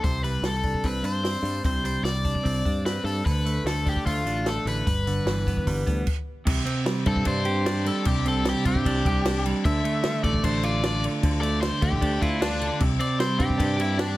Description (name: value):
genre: indie rock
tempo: 151 BPM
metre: 4/4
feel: straight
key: C major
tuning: A4 = 439 Hz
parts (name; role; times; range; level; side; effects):
- cranked stack guitar; melody; 0.0-14.2 s; D4 to E5; -29 LUFS; left 3 dB; overdrive, slapback echo
- clean electric guitar; riff; 0.0-14.2 s; G2 to G4; -27 LUFS; right 2 dB; none
- picked electric bass; bass; 0.0-14.2 s; G1 to G2; -28 LUFS; equal; none
- compact cocktail drum kit; drums; 0.0-14.1 s; crash cymbal, hi-hat, kick drum, snare drum; -28 LUFS; equal; none
room: studio reverb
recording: faint mains hum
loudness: -22 LUFS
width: side -16 dB against mid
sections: 0.0-6.5 A section; 6.5-14.2 B section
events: stop 6.1-6.5; overdriven electric guitar solo 6.5-14.2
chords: 0.0 Csus2; 3.3 Dm; 4.9 G6; 6.5 Csus2; 9.6 Dm; 12.8 Csus2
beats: | 0.04 0.44 0.84 1.25 | 1.65 2.05 2.45 2.85 | 3.26 3.66 4.06 4.46 | 4.86 5.26 5.67 6.07 | 6.46 6.86 7.26 7.66 | 8.05 8.45 8.85 9.24 | 9.64 10.03 10.43 10.82 | 11.22 11.62 12.01 12.41 | 12.80 13.20 13.59 13.98